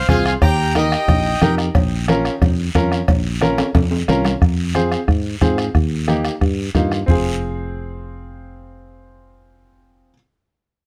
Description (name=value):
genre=latin, cumbia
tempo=180 BPM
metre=4/4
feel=straight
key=F minor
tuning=A4 = 440 Hz
part: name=accordion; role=melody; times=0.0-1.6 s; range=Eb5 to Bb5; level=-24 LUFS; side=equal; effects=tape echo
part: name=sitar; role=second line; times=0.0-1.5 s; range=Eb4 to G4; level=-31 LUFS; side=equal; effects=none
part: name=fingered electric bass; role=bass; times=0.0-10.1 s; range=F1 to Ab2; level=-23 LUFS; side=equal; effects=none
part: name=clear upright piano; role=accompaniment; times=0.1-10.1 s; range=Bb3 to Bb4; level=-23 LUFS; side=equal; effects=none
part: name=bombo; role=percussion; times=0.1-7.2 s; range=none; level=-21 LUFS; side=equal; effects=none
part: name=congas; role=percussion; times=0.1-7.2 s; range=none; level=-27 LUFS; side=equal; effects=none
part: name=guiro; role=percussion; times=0.1-7.2 s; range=none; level=-34 LUFS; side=equal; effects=none
part: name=cowbell and timbales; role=percussion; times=0.4-4.3 s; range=none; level=-28 LUFS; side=equal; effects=none
room=light reverb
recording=close, detailed microphones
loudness=-18 LUFS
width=mono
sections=0.0-4.4 A section; 4.4-7.1 B section; 7.1-9.8 C section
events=drum fill 3.6-4.4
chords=0.4 Eb; 1.8 Bbm; 4.4 Fm; 5.8 Eb; 7.1 Fm